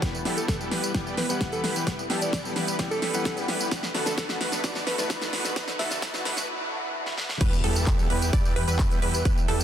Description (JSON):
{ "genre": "EDM, festival progressive house", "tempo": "130 BPM", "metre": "4/4", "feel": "straight", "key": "E minor", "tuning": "A4 = 440 Hz", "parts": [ { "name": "warm grand piano", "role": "accompaniment", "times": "0.0-6.3 s", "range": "D3 to F#5", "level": "-36 LUFS", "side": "left 5 dB", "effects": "sidechain pumping, tape echo" }, { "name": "lush unison pad", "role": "sustained chords", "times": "0.1-9.6 s", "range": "G3 to E6", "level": "-37 LUFS", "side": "left 1 dB", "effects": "chorus, phaser, sidechain pumping" }, { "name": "big supersaw lead", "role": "riff", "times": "0.0-9.6 s", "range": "D3 to D5", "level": "-31 LUFS", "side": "right 1 dB", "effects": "sidechain pumping, low-pass filter, tape echo" }, { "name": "big-room dance drum kit", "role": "drums", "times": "0.0-9.6 s", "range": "crash cymbal, handclaps, hi-hat, snare drum, tambourine", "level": "-30 LUFS", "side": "right 1 dB", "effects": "none" }, { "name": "electronic kick drum", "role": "drums", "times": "0.0-9.3 s", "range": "none", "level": "-26 LUFS", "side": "equal", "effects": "none" }, { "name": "riser, swell and impact", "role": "sound effects", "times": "0.0-9.3 s", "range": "none", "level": "-39 LUFS", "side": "right 1 dB", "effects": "none" }, { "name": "dark alto saxophone", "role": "melody", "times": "0.4-6.0 s", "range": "A4 to E5", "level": "-35 LUFS", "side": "equal", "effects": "tape echo" }, { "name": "wide unison pluck", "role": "arpeggios", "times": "7.4-9.6 s", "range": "A4 to D5", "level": "-33 LUFS", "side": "right 3 dB", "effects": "sidechain pumping, tape echo" }, { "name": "wide detuned saw bass", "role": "bass", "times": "7.4-9.6 s", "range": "E2", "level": "-28 LUFS", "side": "equal", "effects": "chorus, sidechain pumping" } ], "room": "light reverb", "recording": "dense, heavily limited modern master, high-pass filter", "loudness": "-24 LUFS", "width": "side -10 dB against mid", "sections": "0.0-7.4 A section; 7.4-9.6 B section", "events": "build-up 0.0-7.4; drum fill 0.0-6.5, 7.1-7.4; filter sweep 0.0-7.4; break 6.5-7.4; swell 6.5-7.4; drop 7.4-9.6; impact 7.4-9.3", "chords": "0.0 Em; 3.7 Bm7; 7.4 Em" }